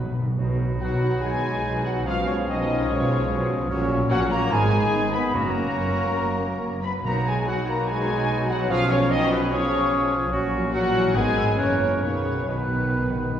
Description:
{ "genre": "quick classical-period movement for symphony orchestra", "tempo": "144 BPM", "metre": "4/4", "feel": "uneven beats, rubato", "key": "B major", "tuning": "A4 = 442 Hz", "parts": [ { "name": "muted studio violin section", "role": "melody", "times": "0.0-13.4 s", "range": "B4 to B5", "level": "-31 LUFS", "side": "left 2 dB", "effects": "none" }, { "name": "clear clarinet", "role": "second line", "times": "0.0-13.4 s", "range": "B3 to D#4", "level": "-32 LUFS", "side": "left 1 dB", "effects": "none" }, { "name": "mellow hollow concert flute", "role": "second line", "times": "0.0-13.4 s", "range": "B4 to F#6", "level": "-33 LUFS", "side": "left 3 dB", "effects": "none" }, { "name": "muted studio violin section", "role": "second line", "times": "0.0-13.4 s", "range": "B3 to B4", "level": "-33 LUFS", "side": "left 2 dB", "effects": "none" }, { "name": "warm oboe", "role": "second line", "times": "0.0-13.4 s", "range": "F#4 to C#5", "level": "-33 LUFS", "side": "equal", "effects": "none" }, { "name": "muted studio viola section", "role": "accompaniment", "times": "0.0-13.4 s", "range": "D#3 to F#4", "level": "-32 LUFS", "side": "right 1 dB", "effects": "none" }, { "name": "warm bassoon", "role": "accompaniment", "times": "0.0-13.4 s", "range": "D#3 to F#3", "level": "-32 LUFS", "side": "right 2 dB", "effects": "none" }, { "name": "warm French horn section", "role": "sustained chords", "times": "0.0-13.4 s", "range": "B2 to B3", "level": "-30 LUFS", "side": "left 2 dB", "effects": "none" }, { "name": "muted studio cello section", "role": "bass", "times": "0.0-13.4 s", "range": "F#2 to F#4", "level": "-29 LUFS", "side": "right 1 dB", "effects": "none" }, { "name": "muted studio double bass section", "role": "bass", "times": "0.0-13.4 s", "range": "F#1 to B1", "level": "-30 LUFS", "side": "right 1 dB", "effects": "none" }, { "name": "timpani", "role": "percussion", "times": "0.0-2.6, 5.3-9.3, 12.0-13.4 s", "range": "F#2 to B2", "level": "-30 LUFS", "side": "right 1 dB", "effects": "none" }, { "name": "dark trumpet section", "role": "stabs", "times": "0.8-13.4 s", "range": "B4 to B5", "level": "-30 LUFS", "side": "right 1 dB", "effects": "none" } ], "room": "wet scoring stage reverb, RT60 1.9 s", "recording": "heard from further back in the room", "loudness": "-20 LUFS", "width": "side -9 dB against mid", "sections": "0.4-13.4 A section", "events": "timpani fill 0.0-0.4, 12.0-13.4", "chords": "0.4 B; 2.1 C#7/B; 3.7 F#/A#; 4.5 G#m; 5.3 F#; 7.0 B; 8.7 C#7/B; 10.3 F#/A#; 11.2 G#m; 11.6 F#7; 12.0 B" }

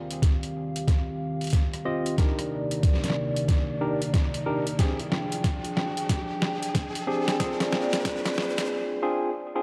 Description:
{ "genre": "glitch hop", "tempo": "92 BPM", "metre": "4/4", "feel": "swing 62% on 16ths", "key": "F dorian", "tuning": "A4 = 440 Hz", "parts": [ { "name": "dark analog pad", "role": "sustained chords", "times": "0.0-8.7 s", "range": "C3 to G5", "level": "-34 LUFS", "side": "equal", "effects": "chorus, sidechain pumping" }, { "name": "riser", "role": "sound effects", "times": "0.0-8.7 s", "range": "none", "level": "-43 LUFS", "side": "equal", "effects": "none" }, { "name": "boom bap sampler-style drum kit", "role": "drums", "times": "0.1-8.7 s", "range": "hi-hat, rim click, snare drum", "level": "-33 LUFS", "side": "equal", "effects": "none" }, { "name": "electronic kick drum", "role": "drums", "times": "0.2-8.2 s", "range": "none", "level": "-26 LUFS", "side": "equal", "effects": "none" }, { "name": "tine electric piano", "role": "stabs", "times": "1.9-9.6 s", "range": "C4 to Eb5", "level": "-32 LUFS", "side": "equal", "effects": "sidechain pumping, delay" } ], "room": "moderate lush hall reverb, RT60 1.8 s", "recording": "dark, warm production, high-pass filter", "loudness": "-27 LUFS", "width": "mono", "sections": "0.0-9.6 A section", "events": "build-up 0.0-9.6; drum fill 0.0-8.7; riser 0.0-8.7; filter sweep 0.0-9.6", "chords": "0.0 Eb69; 2.2 Cm9; 4.8 Fm69; 7.4 Bb7" }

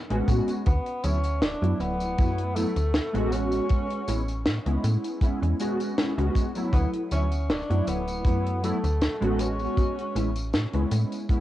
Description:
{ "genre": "vaporwave", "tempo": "79 BPM", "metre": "4/4", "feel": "swing 53% on 16ths", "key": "A major", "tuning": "A4 = 441 Hz", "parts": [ { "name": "warbly lo-fi synth keys", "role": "accompaniment", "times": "0.1-11.4 s", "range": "F#3 to F#4", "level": "-29 LUFS", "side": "equal", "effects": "ensemble chorus, vintage 12-bit sampler grit, cassette tape" }, { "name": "slap-like FM bass", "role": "bass", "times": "0.1-11.0 s", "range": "D1 to A2", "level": "-26 LUFS", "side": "equal", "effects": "none" }, { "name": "tight funk drum kit", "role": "drums", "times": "0.1-11.4 s", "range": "hi-hat, snare drum, tambourine", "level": "-31 LUFS", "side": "equal", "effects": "cassette tape" }, { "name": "kick drum", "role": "drums", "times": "0.3-11.4 s", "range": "none", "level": "-23 LUFS", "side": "equal", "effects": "cassette tape" }, { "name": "mellow tenor saxophone", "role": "melody", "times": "0.7-10.5 s", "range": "A3 to D4", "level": "-32 LUFS", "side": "equal", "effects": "vintage 12-bit sampler grit, cassette tape, tape echo" } ], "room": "light reverb, studio ambience", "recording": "home recording on cassette", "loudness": "-23 LUFS", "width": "side -14 dB against mid", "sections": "0.0-11.4 A section", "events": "none", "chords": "0.0 Amaj7; 0.7 D6; 3.3 Amaj7; 6.7 D6; 9.4 Amaj7" }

